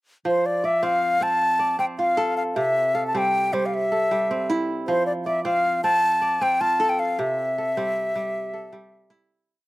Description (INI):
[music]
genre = west african traditional, West African string and xylophone music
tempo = 104 BPM (dotted quarters)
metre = 12/8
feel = straight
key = F major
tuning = A4 = 439 Hz
[part]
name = kora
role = arpeggios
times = 0.2-9.7 s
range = C3 to D5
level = -27 LUFS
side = right 2 dB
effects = slapback echo
[part]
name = bright wooden flute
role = melody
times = 0.3-9.1 s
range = C5 to A5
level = -21 LUFS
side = left 1 dB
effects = slapback echo
[sound]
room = little or no reverb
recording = recorded outdoors, with no room sound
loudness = -20 LUFS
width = side -17 dB against mid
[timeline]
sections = 0.3-9.5 A section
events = fade-out 7.2-9.5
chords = 0.3 F; 2.6 C; 4.9 F; 7.2 C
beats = | 0.26 0.83 1.41 1.99 | 2.56 3.14 3.72 4.30 | 4.88 5.46 6.03 6.61 | 7.19 7.77 8.34 8.92